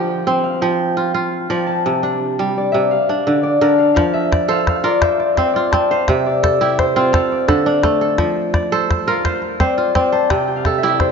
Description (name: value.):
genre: west african traditional, West African string and xylophone music.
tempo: 114 BPM (dotted quarters).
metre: 12/8.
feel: straight.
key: F major.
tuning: A4 = 438 Hz.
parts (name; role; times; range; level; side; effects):
kora; arpeggios; 0.0-11.1 s; C3 to D5; -17 LUFS; right 2 dB; none.
concert harp; melody; 0.4-11.1 s; C5 to A5; -18 LUFS; left 3 dB; tape echo.
calabash; percussion; 4.0-11.1 s; none; -21 LUFS; left 1 dB; none.
room: moderate plate reverb, RT60 3.1 s.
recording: dreamy mix soaked in reverb, nothing above 7.5 kHz.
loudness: -14 LUFS.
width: side -6 dB against mid.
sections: 0.0-4.0 A section; 4.0-11.1 B section.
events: none.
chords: 0.0 F5; 1.8 C5; 2.9 Dm; 4.0 F; 6.1 C; 7.1 Dm; 8.2 F; 10.3 C.